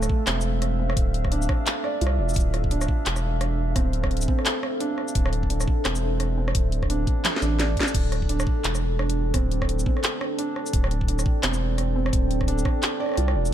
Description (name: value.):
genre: half-time drum and bass.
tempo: 172 BPM.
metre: 4/4.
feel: swing 59% on 16ths, half-time.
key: D minor.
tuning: A4 = 438 Hz.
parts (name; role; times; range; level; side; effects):
deep dark ambient pad; sustained chords; 0.0-13.5 s; D4 to G5; -31 LUFS; equal; chorus, built-in reverb, sidechain pumping.
felt-muted upright piano; arpeggios; 0.0-13.5 s; A3 to D5; -30 LUFS; right 3 dB; tape echo.
saturated sub bass; bass; 0.0-13.5 s; D1 to C2; -25 LUFS; equal; none.
drum and bass drum kit; drums; 0.0-13.5 s; crash cymbal, handclaps, hi-hat, rim click, shaker, snare drum; -28 LUFS; equal; none.
electronic kick drum; drums; 0.1-12.7 s; none; -25 LUFS; equal; none.
room: digital ambience.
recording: none.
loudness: -22 LUFS.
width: side -11 dB against mid.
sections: 0.0-13.5 A section.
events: drum fill 7.2-7.9.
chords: 0.0 Dm.